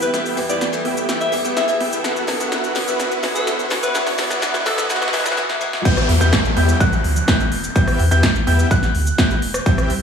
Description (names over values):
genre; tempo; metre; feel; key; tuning
EDM, festival progressive house; 126 BPM; 4/4; straight; E minor; A4 = 440 Hz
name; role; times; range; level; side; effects
bright alto saxophone; melody; 0.0-5.1 s; F#4 to E5; -24 LUFS; left 1 dB; digital delay
lush unison pad; sustained chords; 0.0-5.3 s; D3 to G4; -31 LUFS; right 1 dB; chorus, sidechain pumping
dense compressed supersaw; riff; 0.0-9.9 s; B3 to G5; -24 LUFS; right 1 dB; sidechain pumping, low-pass filter, digital delay
saturated sub bass; bass; 0.0-10.0 s; E1 to E2; -18 LUFS; left 1 dB; sidechain pumping
big-room dance drum kit; drums; 0.0-10.0 s; crash cymbal, hi-hat, rim click, shaker, snare drum; -23 LUFS; equal; none
riser and downlifter; sound effects; 0.7-9.7 s; none; -27 LUFS; equal; none
picked swing-style acoustic guitar; accompaniment; 0.4-5.8 s; E3 to G4; -26 LUFS; left 2 dB; sidechain pumping, digital delay
clear baby grand piano; arpeggios; 5.9-9.9 s; F#6 to G6; -24 LUFS; equal; sidechain pumping, digital delay
electronic kick drum; drums; 5.9-9.8 s; none; -17 LUFS; equal; none
room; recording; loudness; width
moderate concert hall reverb, RT60 1.8 s, digital ambience; high-pass filter, studio ambience; -16 LUFS; side -7 dB against mid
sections
0.0-5.9 A section; 5.9-10.0 B section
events
build-up 0.0-5.9; drum fill 0.0-5.4, 5.4-5.9; riser 0.7-5.4; break 5.4-5.9; drop 5.9-10.0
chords
0.0 Em; 2.0 Bm; 5.9 Em